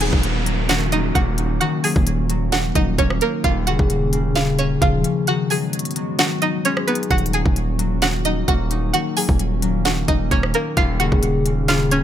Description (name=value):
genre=hip hop, trap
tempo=131 BPM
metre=4/4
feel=half-time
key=Eb minor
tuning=A4 = 437 Hz
part: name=string-like resonator pluck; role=melody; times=0.0-12.0 s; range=Bb3 to Ab5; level=-22 LUFS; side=right 3 dB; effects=chorus, phaser, low-pass filter, tape echo
part: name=concert harp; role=accompaniment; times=0.0-12.0 s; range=Eb2 to Eb4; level=-23 LUFS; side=left 5 dB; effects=low-pass filter
part: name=dark analog pad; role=sustained chords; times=0.0-12.0 s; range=Eb3 to Gb4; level=-28 LUFS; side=right 4 dB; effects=wide subtle chorus
part: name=distorted 808-style bass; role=bass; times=0.0-12.0 s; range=Eb1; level=-22 LUFS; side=equal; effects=distortion
part: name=trap drum kit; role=drums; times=0.0-12.0 s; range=hi-hat, kick drum, rim click, snare drum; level=-21 LUFS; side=equal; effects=none
part: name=downlifter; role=sound effects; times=0.0-3.4 s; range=none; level=-29 LUFS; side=right 2 dB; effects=none
room=digital ambience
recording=none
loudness=-17 LUFS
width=side -10 dB against mid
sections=0.0-12.0 A section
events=kick muted 5.3-7.1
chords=0.0 Ebm7; 3.4 Bbm/Eb; 5.3 Abm7; 7.1 Ebm7; 10.8 Bbm/Eb